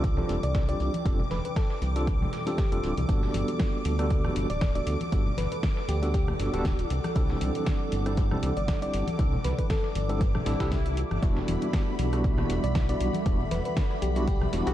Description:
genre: deep house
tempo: 118 BPM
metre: 4/4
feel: swing 55% on 16ths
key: unclear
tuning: A4 = 440 Hz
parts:
  - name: overdriven tine electric piano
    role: stabs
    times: 0.0-14.7 s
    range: G3 to A4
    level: -32 LUFS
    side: right 1 dB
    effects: fast tremolo, sidechain pumping, analog delay
  - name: round analog bass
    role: bass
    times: 0.0-14.7 s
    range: D1 to D2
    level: -29 LUFS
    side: equal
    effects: sidechain pumping
  - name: deep house drum kit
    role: drums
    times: 0.0-14.7 s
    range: hi-hat, rim click, snare drum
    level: -38 LUFS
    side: equal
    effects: none
  - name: dusty soul sampler-style drum kit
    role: drums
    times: 0.0-14.7 s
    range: hi-hat, snare drum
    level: -47 LUFS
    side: equal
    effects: overdrive, high-pass filter on hats, high-pass filter on snare, high-pass filter on room
  - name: electronic kick drum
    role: drums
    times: 0.0-14.4 s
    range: none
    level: -27 LUFS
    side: equal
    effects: none
  - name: string machine, violins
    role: texture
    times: 0.0-14.7 s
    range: B5 to D6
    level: -41 LUFS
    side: equal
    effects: ensemble chorus, sidechain pumping
  - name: warbly tape-like pad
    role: texture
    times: 0.0-14.7 s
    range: A4 to G5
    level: -40 LUFS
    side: equal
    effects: chorus, built-in reverb, phaser, sidechain pumping
  - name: congas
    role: percussion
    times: 0.2-14.5 s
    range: none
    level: -36 LUFS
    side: left 2 dB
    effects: sidechain pumping on perc
  - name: bell-like FM electric piano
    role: melody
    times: 0.4-14.7 s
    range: G4 to D5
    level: -37 LUFS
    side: left 1 dB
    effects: chorus, cassette tape, ping-pong delay
  - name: swell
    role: sound effects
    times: 10.3-11.2 s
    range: none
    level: -43 LUFS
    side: left 3 dB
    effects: none
  - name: hollow soft pad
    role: sustained chords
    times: 11.2-14.7 s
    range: G3 to D6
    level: -36 LUFS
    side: right 2 dB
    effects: ensemble chorus, vintage 12-bit sampler grit, sidechain pumping
room: light reverb, digital ambience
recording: cassette tape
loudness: -24 LUFS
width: side -13 dB against mid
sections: 0.0-14.7 A section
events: swell 10.3-11.2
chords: 0.0 F69; 3.1 Gmaj7; 6.9 C69; 11.2 Em9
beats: 0.04 0.55 | 1.06 1.56 2.07 2.58 | 3.09 3.60 4.11 4.62 | 5.12 5.63 6.14 6.65 | 7.16 7.67 8.18 8.68 | 9.19 9.70 10.21 10.72 | 11.22 11.73 12.24 12.75 | 13.26 13.77 14.28

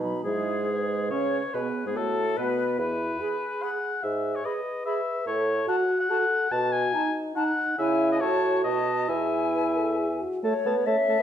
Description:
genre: quick classical-period movement for wind quintet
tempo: 131-148 BPM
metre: 3/4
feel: rubato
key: E major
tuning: A4 = 440 Hz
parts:
  - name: bright silver concert flute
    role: melody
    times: 0.0-11.2 s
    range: G#4 to B5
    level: -30 LUFS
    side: left 7 dB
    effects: none
  - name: clear clarinet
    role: accompaniment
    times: 0.0-11.2 s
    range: G#3 to A4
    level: -31 LUFS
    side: right 6 dB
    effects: none
  - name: mellow French horn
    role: accompaniment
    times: 0.0-11.2 s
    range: F#3 to B4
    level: -31 LUFS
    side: left 1 dB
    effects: none
  - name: mellow bassoon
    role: bass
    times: 0.0-11.2 s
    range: E2 to C#4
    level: -30 LUFS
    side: right 3 dB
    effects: none
  - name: warm oboe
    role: second line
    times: 0.2-11.2 s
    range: G#4 to A5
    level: -29 LUFS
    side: left 3 dB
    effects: none
room: wet recital hall reverb, RT60 1.3 s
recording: none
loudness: -24 LUFS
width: side -9 dB against mid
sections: 0.2-10.4 A section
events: none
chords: 0.2 E/G#; 1.5 B5; 2.8 E; 4.0 E/G#; 5.3 F#m/A; 6.5 B7; 7.8 C#m; 8.2 F#m/A; 8.6 B7; 9.1 E; 10.4 A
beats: | 0.25 0.68 1.11 | 1.54 1.96 2.38 | 2.79 3.21 3.63 | 4.04 4.46 4.87 | 5.28 5.69 6.10 | 6.52 6.94 7.36 | 7.79 8.21 8.65 | 9.09 9.55 10.00 | 10.44 10.87

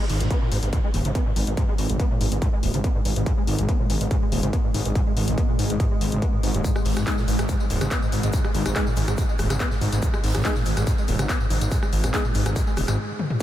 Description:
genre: driving peak-time techno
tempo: 142 BPM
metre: 4/4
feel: straight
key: G# minor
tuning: A4 = 440 Hz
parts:
  - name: overdriven acid bass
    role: riff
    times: 0.0-13.4 s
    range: G#1 to B3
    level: -28 LUFS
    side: equal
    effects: distortion, ensemble chorus, sidechain pumping, analog delay
  - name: swarming drone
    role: drone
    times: 0.9-13.4 s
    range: G#2 to G#3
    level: -31 LUFS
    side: equal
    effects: built-in reverb, sidechain pumping
  - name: detuned saw bass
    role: bass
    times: 0.1-13.0 s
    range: D#1 to G#1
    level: -26 LUFS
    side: equal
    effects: tube saturation, sidechain pumping
  - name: punchy analog drum machine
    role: drums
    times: 0.1-13.4 s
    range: crash cymbal, handclaps, hi-hat, rim click, tambourine, toms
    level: -30 LUFS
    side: left 2 dB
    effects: none
  - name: electronic kick drum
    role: drums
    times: 0.3-13.4 s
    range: none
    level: -24 LUFS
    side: equal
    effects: distortion, overdrive
  - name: modern studio drum kit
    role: drums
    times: 6.6-13.4 s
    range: hi-hat, shaker, snare drum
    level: -42 LUFS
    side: equal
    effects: sidechain pumping on hats, high-pass filter on hats, high-pass filter on snare, sidechain pumping on perc, high-pass filter on perc, high-pass filter on room
  - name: wavetable chord stab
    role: stabs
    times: 7.1-12.2 s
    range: G#3 to G#4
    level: -35 LUFS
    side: left 2 dB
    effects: none
room: light reverb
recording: none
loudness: -20 LUFS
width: side -12 dB against mid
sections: 0.0-13.4 A section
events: stop 13.0-13.4; drum fill 13.2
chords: 0.0 G#5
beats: 0.31 0.73 1.15 | 1.57 2.00 2.42 2.84 | 3.26 3.69 4.11 4.53 | 4.95 5.38 5.80 6.22 | 6.64 7.07 7.49 7.91 | 8.33 8.76 9.18 9.60 | 10.03 10.45 10.87 11.29 | 11.71 12.14 12.56 12.98 | 13.40

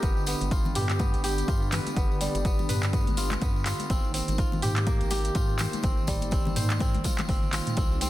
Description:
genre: afro house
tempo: 124 BPM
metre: 4/4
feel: swing 58% on 16ths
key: unclear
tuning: A4 = 440 Hz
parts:
  - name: warm analog pad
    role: sustained chords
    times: 0.0-8.1 s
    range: D3 to G4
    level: -35 LUFS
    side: right 2 dB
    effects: lush chorus, sidechain pumping
  - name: kora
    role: arpeggios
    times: 0.0-8.1 s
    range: G3 to C5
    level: -33 LUFS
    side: equal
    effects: sidechain pumping, tape echo
  - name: round analog bass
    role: bass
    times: 0.0-8.1 s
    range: G1 to Ab2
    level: -30 LUFS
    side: equal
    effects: sidechain pumping
  - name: afro-pop drum kit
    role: drums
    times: 0.0-8.1 s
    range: handclaps, hi-hat, toms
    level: -33 LUFS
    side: right 1 dB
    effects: none
  - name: electronic kick drum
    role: drums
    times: 0.0-7.9 s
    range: none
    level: -27 LUFS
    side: equal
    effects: overdrive
  - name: congas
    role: percussion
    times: 0.0-8.1 s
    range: none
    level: -37 LUFS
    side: left 5 dB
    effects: none
  - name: tambourine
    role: percussion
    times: 0.0-8.1 s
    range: none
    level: -39 LUFS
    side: left 4 dB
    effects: none
room: studio reverb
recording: dense, heavily limited modern master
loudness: -24 LUFS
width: side -15 dB against mid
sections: 0.0-7.8 A section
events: drum fill 7.0-7.8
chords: 0.0 G; 3.9 Absus2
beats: | 0.03 0.51 1.00 1.48 | 1.97 2.45 2.93 3.42 | 3.90 4.38 4.87 5.35 | 5.84 6.32 6.80 7.29 | 7.77

